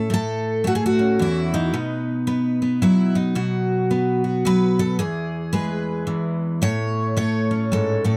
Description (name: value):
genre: folk, solo fingerstyle acoustic guitar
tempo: 110 BPM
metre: 3/4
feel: swing 61% on 8ths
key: A lydian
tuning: A4 = 442 Hz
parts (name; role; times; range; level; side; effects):
- picked twelve-string acoustic guitar; solo; 0.0-8.2 s; E2 to C#5; -21 LUFS; equal; none
room: light reverb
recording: dry, close 1970s-style studio recording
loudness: -21 LUFS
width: mono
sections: 0.1-8.2 A section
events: none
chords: 0.1 A; 1.7 B5; 5.0 E; 6.6 A